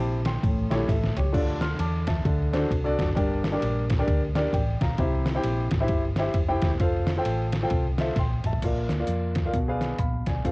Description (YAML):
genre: uptempo gospel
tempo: 132 BPM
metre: 4/4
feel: swing 62% on 8ths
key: F major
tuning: A4 = 441 Hz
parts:
  - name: warm grand piano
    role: accompaniment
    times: 0.0-10.5 s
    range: G2 to F6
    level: -27 LUFS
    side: left 1 dB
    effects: none
  - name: hollow-body short-scale fingered electric bass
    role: bass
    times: 0.0-10.5 s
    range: E1 to F2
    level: -28 LUFS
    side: equal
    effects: none
  - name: trip hop sampler-style drum kit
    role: drums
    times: 0.3-10.5 s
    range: crash cymbal, hi-hat, kick drum, ride cymbal, snare drum, toms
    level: -27 LUFS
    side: equal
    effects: none
room: little or no reverb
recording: home recording on cassette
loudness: -22 LUFS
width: side -26 dB against mid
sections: 0.0-8.6 A section; 8.6-10.5 B section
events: drum fill 0.9-1.3, 8.2-8.6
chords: 0.4 A7; 1.3 Dm; 2.3 D7; 3.2 Gm; 5.0 C; 6.8 F; 8.6 Bb; 9.5 Bdim7